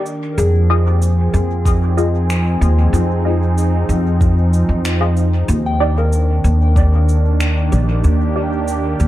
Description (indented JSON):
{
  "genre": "ambient dub",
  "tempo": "94 BPM",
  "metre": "4/4",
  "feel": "straight",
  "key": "F dorian",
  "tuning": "A4 = 436 Hz",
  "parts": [
    { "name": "warm analog pad", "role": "sustained chords", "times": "0.0-9.1 s", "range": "Eb3 to Ab4", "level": "-21 LUFS", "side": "right 2 dB", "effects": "wide subtle chorus" },
    { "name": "soft synth bell", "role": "arpeggios", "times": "0.0-9.1 s", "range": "Ab4 to G5", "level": "-27 LUFS", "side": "left 3 dB", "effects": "chorus, dub echo" },
    { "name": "filtered dub chord stab", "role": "stabs", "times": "0.0-8.5 s", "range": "Eb4 to Eb5", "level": "-24 LUFS", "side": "left 1 dB", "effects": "phaser, analog chorus, dub echo" },
    { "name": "electronic cabasa and finger snaps", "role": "drums", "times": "0.1-9.1 s", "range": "none", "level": "-28 LUFS", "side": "equal", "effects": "overdrive, dub echo" },
    { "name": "upright bass", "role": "bass", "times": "0.4-9.1 s", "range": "Bb1 to F2", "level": "-14 LUFS", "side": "equal", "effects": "none" },
    { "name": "electronic kick drum", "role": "drums", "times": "1.7-6.9 s", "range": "none", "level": "-16 LUFS", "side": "equal", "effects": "none" }
  ],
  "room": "light reverb",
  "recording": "none",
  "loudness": "-13 LUFS",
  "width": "side -14 dB against mid",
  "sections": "0.4-9.1 A section",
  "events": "break 0.0-0.4",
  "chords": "0.4 Fm7; 5.5 Ebmaj7"
}